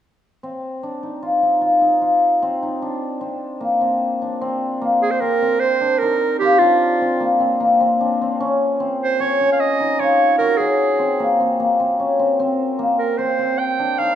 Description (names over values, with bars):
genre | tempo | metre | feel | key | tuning
contemporary instrumental, contemporary | 150 BPM | 5/4 | straight | Bb mixolydian | A4 = 439 Hz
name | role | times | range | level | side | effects
cimbalom | arpeggios | 0.4-14.2 s | Bb3 to Gb4 | -17 LUFS | left 2 dB | none
clear clarinet | melody | 5.0-14.2 s | F4 to G5 | -19 LUFS | right 4 dB | none
room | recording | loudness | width
wet scoring stage reverb, RT60 1.9 s | minimal, uncompressed stereo recording | -16 LUFS | side -10 dB against mid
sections
0.4-4.4 A section; 4.4-14.2 B section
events
none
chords
0.4 Bbsus2; 8.4 Gbadd9; 12.4 Bbsus2